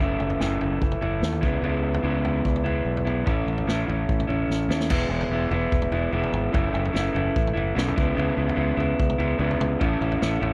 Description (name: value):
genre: indie rock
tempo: 147 BPM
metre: 4/4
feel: straight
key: E major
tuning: A4 = 443 Hz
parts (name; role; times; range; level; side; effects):
- electric guitar through a small old amp; riff; 0.0-10.5 s; F#2 to E4; -27 LUFS; equal; none
- growling fingered electric bass; bass; 0.0-10.5 s; E1 to D#2; -29 LUFS; equal; overdrive
- vintage drum kit; drums; 0.2-10.5 s; crash cymbal, kick drum, snare drum, toms; -31 LUFS; equal; none
room: little or no reverb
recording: dry, close 1970s-style studio recording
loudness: -24 LUFS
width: mono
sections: 0.0-4.9 A section; 4.9-10.5 A section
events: drum fill 4.5-4.9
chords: 0.0 F#m7; 1.4 C#m7; 3.3 A; 4.9 E; 6.5 F#m7; 8.0 C#m7; 9.8 A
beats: 0.40 0.81 1.22 | 1.63 2.04 2.44 2.85 | 3.26 3.67 4.08 4.49 | 4.90 5.31 5.72 6.13 | 6.54 6.95 7.35 7.76 | 8.17 8.58 8.99 9.40 | 9.80 10.21